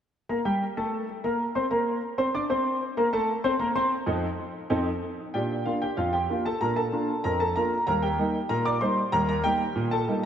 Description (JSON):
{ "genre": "ragtime piano", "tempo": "95 BPM", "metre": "2/4", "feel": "straight", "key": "Bb major", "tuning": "A4 = 440 Hz", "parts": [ { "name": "warm concert grand piano", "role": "solo", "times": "0.3-10.3 s", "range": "Eb2 to D6", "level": "-24 LUFS", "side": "equal", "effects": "analog chorus, tape echo" } ], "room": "wet lush hall reverb, RT60 2.1 s", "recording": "dreamy mix soaked in reverb", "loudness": "-24 LUFS", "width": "side -9 dB against mid", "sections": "0.3-5.3 A section; 5.3-10.3 B section", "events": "none", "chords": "0.3 N.C.; 2.8 F7; 5.3 Bb; 7.9 Eb", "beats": "| 0.29 0.92 | 1.55 2.18 | 2.81 3.44 | 4.07 4.70 | 5.34 5.97 | 6.60 7.23 | 7.86 8.49 | 9.13 9.76" }